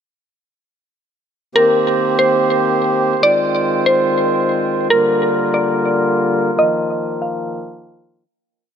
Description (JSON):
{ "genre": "hip hop, atmospheric cloud-rap", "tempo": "143 BPM", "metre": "4/4", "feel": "half-time", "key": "unclear", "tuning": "A4 = 440 Hz", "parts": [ { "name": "mallet-like synth pluck", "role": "melody", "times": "1.6-7.4 s", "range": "Bb4 to F5", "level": "-17 LUFS", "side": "equal", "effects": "chorus, low-pass filter, digital delay" }, { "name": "mellow accordion", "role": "sustained chords", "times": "1.6-8.3 s", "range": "D3 to C5", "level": "-16 LUFS", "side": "equal", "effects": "none" } ], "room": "moderate huge ambient reverb, RT60 4.8 s", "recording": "low-pass filter", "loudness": "-14 LUFS", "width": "side -8 dB against mid", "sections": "1.6-8.3 breakdown", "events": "filter sweep 1.6-8.3; fade-out 6.6-8.3", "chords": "1.6 Cm7; 3.2 Fm7; 4.9 Gm7; 6.6 Bbsus4", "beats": "| 1.55 1.97 2.39 2.81 | 3.23 3.65 4.07 4.49 | 4.91 5.33 5.75 6.17 | 6.59 7.01 7.43 7.85" }